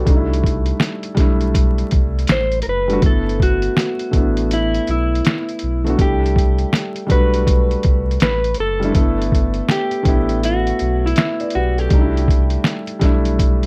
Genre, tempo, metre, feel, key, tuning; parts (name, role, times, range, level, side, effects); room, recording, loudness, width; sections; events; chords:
lo-fi hip hop; 81 BPM; 4/4; swing 65% on 16ths; A4 = 440 Hz
felt-muted upright piano; accompaniment; 0.0-13.7 s; G3 to E5; -24 LUFS; equal; low-pass filter
sub bass with octave; bass; 0.0-13.7 s; F#1 to C2; -22 LUFS; equal
lo-fi sampler-style drum kit; drums; 0.1-13.7 s; finger snaps, hi-hat, kick drum, snare drum; -19 LUFS; equal
mellow electric guitar; melody; 2.3-13.7 s; E4 to C5; -24 LUFS; equal; low-pass filter
light reverb; vinyl crackle; -17 LUFS; mono
0.0-13.7 A section
0.1 C6; 3.0 G69; 6.0 C6; 9.0 G69; 11.9 C6